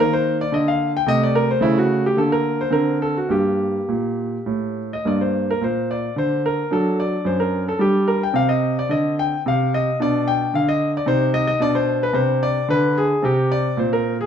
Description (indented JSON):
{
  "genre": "classical, baroque-style suite movement for grand piano",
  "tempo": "110 BPM",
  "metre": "3/4",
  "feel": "rubato",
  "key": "G minor",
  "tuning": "A4 = 440 Hz",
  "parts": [
    { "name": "clear concert grand piano", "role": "solo", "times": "0.0-14.3 s", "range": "F#2 to G5", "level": "-18 LUFS", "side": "equal", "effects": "none" }
  ],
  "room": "wet stone room reverb, RT60 1.1 s",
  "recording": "heard from further back in the room",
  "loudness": "-18 LUFS",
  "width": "side -8 dB against mid",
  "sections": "0.0-5.1 A section; 5.1-14.3 B section",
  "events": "none",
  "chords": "0.0 Eb5; 1.1 Cm13; 1.6 A/C#; 2.2 Bbmaj9/D; 2.7 D7b13; 3.3 Gm; 6.7 D/F#; 7.8 G5; 8.3 Cmadd9; 10.0 Bm; 11.0 Cm; 11.6 Bm6; 13.2 C5"
}